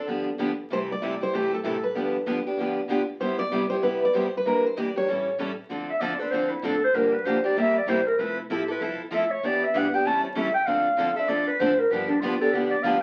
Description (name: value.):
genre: acoustic string swing (jazz manouche).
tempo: 193 BPM.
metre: 4/4.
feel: swing 60% on 8ths.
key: C major.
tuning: A4 = 439 Hz.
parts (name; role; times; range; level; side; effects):
picked steel-string acoustic guitar; melody; 0.0-5.4 s; G4 to D5; -29 LUFS; equal; none.
picked steel-string acoustic guitar; accompaniment; 0.0-13.0 s; C3 to A4; -30 LUFS; equal; none.
picked steel-string acoustic guitar; accompaniment; 0.1-13.0 s; C3 to B4; -35 LUFS; equal; none.
upright bass; bass; 0.1-13.0 s; F1 to A2; -49 LUFS; equal; none.
breathy clarinet; second line; 5.9-13.0 s; D4 to A5; -26 LUFS; equal; none.
room: wet small room reverb, RT60 0.6 s.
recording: very old 78 rpm record, vinyl crackle.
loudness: -25 LUFS.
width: mono.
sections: 0.0-5.7 A section; 5.7-13.0 B section.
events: clarinet solo 5.7-13.0.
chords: 0.1 G7; 0.7 C6; 2.0 G7; 3.2 Cmaj7; 4.5 Em7b5; 5.1 A7; 5.7 Dm7; 6.9 Gm7; 7.6 C7; 8.2 Fmaj7; 9.4 Em7; 10.1 A7; 10.7 Dm7; 11.9 G7.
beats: 0.09 0.40 | 0.71 1.02 1.33 1.65 | 1.96 2.27 2.58 2.90 | 3.21 3.52 3.83 4.14 | 4.46 4.77 5.08 5.39 | 5.70 6.01 6.33 6.64 | 6.95 7.26 7.57 7.88 | 8.19 8.50 8.81 9.12 | 9.43 9.74 10.05 10.37 | 10.68 10.99 11.30 11.61 | 11.92 12.23 12.54 12.85.